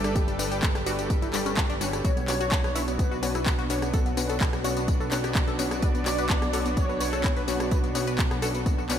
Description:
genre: progressive house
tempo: 127 BPM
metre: 4/4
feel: straight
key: B minor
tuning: A4 = 442 Hz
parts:
  - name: supersaw pad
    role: sustained chords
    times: 0.0-9.0 s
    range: G3 to B4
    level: -32 LUFS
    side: right 1 dB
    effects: sidechain pumping
  - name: tight sequenced synth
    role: arpeggios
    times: 0.0-9.0 s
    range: G3 to B4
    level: -34 LUFS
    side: left 2 dB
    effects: chorus, sidechain pumping, ping-pong delay
  - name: fat analog bass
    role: bass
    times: 0.0-9.0 s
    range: G1 to B1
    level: -33 LUFS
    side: equal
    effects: sidechain pumping
  - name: house drum kit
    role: drums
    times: 0.0-9.0 s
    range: handclaps, hi-hat, rim click, tambourine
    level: -32 LUFS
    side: left 1 dB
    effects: overdrive, sidechain pumping on hats, small room ambience, sidechain pumping on perc
  - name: electronic kick drum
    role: drums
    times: 0.2-8.8 s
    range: none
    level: -26 LUFS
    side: equal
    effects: overdrive, small room ambience
  - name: wide unison pluck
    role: stabs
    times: 0.4-9.0 s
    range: C#4 to D5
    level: -33 LUFS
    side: left 3 dB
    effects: cassette tape, sidechain pumping, ping-pong delay
  - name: expressive portamento lead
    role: melody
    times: 2.0-7.4 s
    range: B4 to D5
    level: -33 LUFS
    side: right 1 dB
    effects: ensemble chorus, sidechain pumping, ping-pong delay
room: moderate lush hall reverb, RT60 1.7 s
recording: dreamy mix soaked in reverb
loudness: -23 LUFS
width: side -9 dB against mid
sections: 0.0-9.0 A section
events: none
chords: 0.0 Gadd9; 2.0 Bmadd9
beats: | 0.16 0.63 1.10 1.57 | 2.05 2.52 2.99 3.46 | 3.94 4.41 4.88 5.35 | 5.83 6.30 6.77 7.24 | 7.71 8.19 8.66

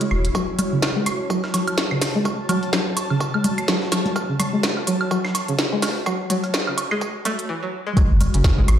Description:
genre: minimal techno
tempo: 126 BPM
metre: 4/4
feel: swing 57% on 16ths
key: F# minor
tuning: A4 = 441 Hz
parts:
  - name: string-like resonator pluck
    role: riff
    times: 0.0-8.6 s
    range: C#3 to A3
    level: -24 LUFS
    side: equal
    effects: chorus, sidechain pumping, dub echo
  - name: minimal click drum kit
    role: drums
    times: 0.0-8.8 s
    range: hi-hat, snare drum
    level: -24 LUFS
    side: equal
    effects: overdrive
  - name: airy breathy pad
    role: texture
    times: 0.0-8.8 s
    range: F#4 to B5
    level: -31 LUFS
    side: left 1 dB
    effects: chorus, sidechain pumping
  - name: round analog bass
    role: bass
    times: 0.1-0.3, 8.0-8.8 s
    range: E1 to A1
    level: -18 LUFS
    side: equal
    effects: sidechain pumping
  - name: woodblock and congas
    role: percussion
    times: 0.1-8.8 s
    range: none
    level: -26 LUFS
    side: right 2 dB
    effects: dub echo
  - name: breakbeat sampler-style drum kit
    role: drums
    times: 0.3-8.8 s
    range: hi-hat, snare drum, tambourine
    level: -34 LUFS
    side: equal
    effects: high-pass filter on perc, high-pass filter on snare, high-pass filter on hats
  - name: electronic kick drum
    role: drums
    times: 0.3-8.6 s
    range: none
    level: -23 LUFS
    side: equal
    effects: overdrive, high-pass filter on kick, high-pass filter on room
room: moderate digital room reverb, RT60 1.0 s, digital ambience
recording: played on a big sound system in a bare room, large studio reverb, high-pass filter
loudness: -19 LUFS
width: side -10 dB against mid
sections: 0.3-8.0 A section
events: build-up 0.3-8.0; filter sweep on synth pluck 0.3-8.0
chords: 0.3 F#m; 8.0 N.C.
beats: | 0.35 0.82 1.30 1.78 | 2.25 2.73 3.21 3.68 | 4.16 4.63 5.11 5.59 | 6.06 6.54 7.01 7.49 | 7.97 8.44

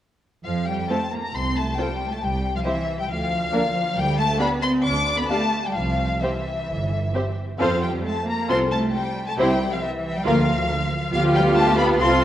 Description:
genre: quick classical-period movement for string orchestra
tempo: 136 BPM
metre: 4/4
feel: rubato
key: F major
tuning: A4 = 437 Hz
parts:
  - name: rich chamber violin section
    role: melody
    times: 0.4-12.2 s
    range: E5 to D6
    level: -25 LUFS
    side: left 4 dB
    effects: none
  - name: rich chamber double bass section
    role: bass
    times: 0.4-12.2 s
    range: G1 to F2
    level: -26 LUFS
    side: right 2 dB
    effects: tube saturation
  - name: warm chamber cello section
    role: bass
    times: 0.4-12.2 s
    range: E3 to D4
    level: -27 LUFS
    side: right 2 dB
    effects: transformer saturation
  - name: rich chamber violin section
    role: second line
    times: 0.9-12.2 s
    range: G4 to F5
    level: -26 LUFS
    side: left 2 dB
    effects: none
  - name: rich chamber viola section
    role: accompaniment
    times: 0.9-12.2 s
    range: Bb3 to G4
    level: -26 LUFS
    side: right 2 dB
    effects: none
room: moderate scoring stage reverb, RT60 2.1 s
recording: worn, warbling old tape, cassette tape, warbly pitch drift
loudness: -20 LUFS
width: side -12 dB against mid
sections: 0.4-12.2 A section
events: none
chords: 0.4 F; 2.2 C; 3.1 Bb/D (rootless); 4.0 G/D; 5.8 C; 7.6 F; 9.4 C; 10.3 Bb/D; 11.1 G7/D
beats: | 0.45 0.90 1.34 1.78 | 2.22 2.66 3.10 3.53 | 3.97 4.41 4.85 5.29 | 5.76 6.22 6.68 7.14 | 7.60 8.05 8.50 8.94 | 9.38 9.82 10.26 10.70 | 11.13 11.56 12.01

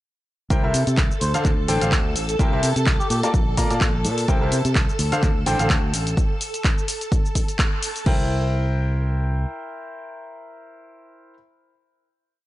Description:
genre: piano house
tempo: 127 BPM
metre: 4/4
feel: swing 56% on 16ths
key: C mixolydian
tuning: A4 = 440 Hz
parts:
  - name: string machine, violins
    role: sustained chords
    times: 0.5-8.1 s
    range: A4 to A5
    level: -30 LUFS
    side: equal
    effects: ensemble chorus, vintage 12-bit sampler grit, sidechain pumping
  - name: bright grand piano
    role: riff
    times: 0.5-11.3 s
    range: C3 to Bb5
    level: -26 LUFS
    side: left 1 dB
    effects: sidechain pumping, analog delay
  - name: fingered electric bass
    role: bass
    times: 0.5-9.4 s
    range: A1 to C3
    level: -23 LUFS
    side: equal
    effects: sidechain pumping
  - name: electronic kick drum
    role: drums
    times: 0.5-8.2 s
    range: none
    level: -20 LUFS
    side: equal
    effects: none
  - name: punchy analog drum machine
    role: drums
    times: 0.5-8.2 s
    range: crash cymbal, handclaps, hi-hat, shaker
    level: -27 LUFS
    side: equal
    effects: none
  - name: trumpet with cup mute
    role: melody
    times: 1.2-3.3 s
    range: G4 to C5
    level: -30 LUFS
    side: equal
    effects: analog delay
room: little or no reverb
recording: dry, gritty hardware recording, nothing above 10.8 kHz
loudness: -18 LUFS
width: side -16 dB against mid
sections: 0.5-8.1 drop; 8.1-11.8 final chord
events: drop 0.5-8.1; band accent 7.6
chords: 0.5 C7; 1.2 Dm7; 2.4 C7; 3.1 Bbmaj7; 4.3 C7; 5.0 Dm7; 6.2 N.C.; 8.1 C7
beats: | 0.50 0.98 1.45 1.92 | 2.39 2.87 3.34 3.81 | 4.28 4.76 5.23 5.70 | 6.17 6.65 7.12 7.59 | 8.06 8.54 9.01 9.48 | 9.95 10.43 10.90

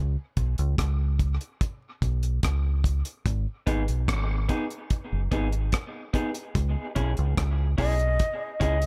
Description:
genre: dub reggae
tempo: 73 BPM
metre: 4/4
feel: straight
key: C# minor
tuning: A4 = 442 Hz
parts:
  - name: deep dub fingered electric bass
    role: bass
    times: 0.0-8.9 s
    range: F#1 to C#2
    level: -27 LUFS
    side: equal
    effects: none
  - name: deep reggae drum kit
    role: drums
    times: 0.4-8.9 s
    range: hi-hat, kick drum, rim click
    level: -30 LUFS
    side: equal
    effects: none
  - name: electric guitar through a small old amp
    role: accompaniment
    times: 3.7-8.8 s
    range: B3 to G#4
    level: -35 LUFS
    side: equal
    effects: dub echo
  - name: mellow hollow jazz flute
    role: melody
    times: 7.8-8.6 s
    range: D#5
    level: -30 LUFS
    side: equal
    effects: dub echo
room: light reverb, small room ambience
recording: echo-heavy mix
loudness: -27 LUFS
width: mono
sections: 0.0-6.5 A section; 6.5-8.9 B section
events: break 0.0-3.3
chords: 0.0 Bsus2; 3.3 G#m; 6.5 C#m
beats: 0.78 1.61 2.43 | 3.25 4.08 4.90 5.73 | 6.55 7.37 8.20

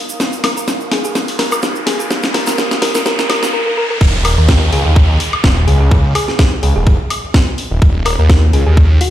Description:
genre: bass house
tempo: 126 BPM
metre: 4/4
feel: swing 55% on 16ths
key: unclear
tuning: A4 = 440 Hz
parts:
  - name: riser and downlifter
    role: sound effects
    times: 0.0-7.8 s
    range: none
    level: -22 LUFS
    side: equal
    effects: none
  - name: warbly tape-like pad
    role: texture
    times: 0.0-3.5 s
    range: Eb4 to Eb6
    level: -27 LUFS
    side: equal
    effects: chorus, built-in reverb, sidechain pumping
  - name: egg shaker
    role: percussion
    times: 0.1-3.5 s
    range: none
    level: -27 LUFS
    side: right 4 dB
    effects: none
  - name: house drum kit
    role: drums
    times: 0.2-9.1 s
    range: crash cymbal, hi-hat, snare drum, woodblock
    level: -17 LUFS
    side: left 1 dB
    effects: none
  - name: thumb-piano-like synth pluck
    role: melody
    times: 0.4-9.1 s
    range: Gb4 to Bb4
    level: -21 LUFS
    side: equal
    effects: chorus, ping-pong delay
  - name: phased detuned saw bass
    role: bass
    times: 4.0-9.0 s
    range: Eb1 to Eb2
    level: -12 LUFS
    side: equal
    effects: phaser, tube saturation, sidechain pumping
  - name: electronic kick drum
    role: drums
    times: 4.0-8.9 s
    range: none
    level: -9 LUFS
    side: equal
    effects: overdrive
room: light reverb, digital ambience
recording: played on a big sound system in a bare room, stone room reverb, high-pass filter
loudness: -11 LUFS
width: side -12 dB against mid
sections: 0.0-4.0 A section; 4.0-9.1 B section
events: build-up 0.0-4.0; drum fill 0.0-3.5; riser 0.0-4.0; drop 4.0-9.1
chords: 0.0 Eb5; 4.0 Eb7(no3)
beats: | 0.20 0.68 1.15 1.63 | 2.10 2.58 3.06 3.53 | 4.01 4.49 4.96 5.44 | 5.91 6.39 6.87 7.34 | 7.82 8.29 8.77

